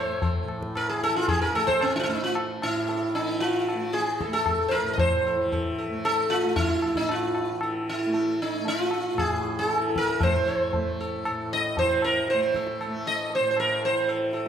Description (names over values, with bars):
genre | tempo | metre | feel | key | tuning
indian classical, Hindustani | 115 BPM | 5/4 | straight | A raga todi | A4 = 441 Hz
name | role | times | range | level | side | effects
sitar | melody | 0.0-14.5 s | C4 to D#5 | -24 LUFS | right 1 dB | none
tanpura | drone | 0.0-14.5 s | A2 to A3 | -33 LUFS | equal | none
tabla | percussion | 0.2-14.5 s | none | -31 LUFS | left 2 dB | none
room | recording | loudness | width
wet recital hall reverb, RT60 1.7 s | none | -23 LUFS | side -8 dB against mid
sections
0.0-14.5 A section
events
speeding up 0.0-14.5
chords
none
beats
0.23 0.76 1.30 1.83 | 2.36 2.89 3.42 3.95 4.48 | 5.01 5.53 6.06 6.58 7.11 | 7.63 8.15 8.67 9.19 9.71 | 10.23 10.74 11.26 11.78 12.29 | 12.80 13.31 13.82 14.34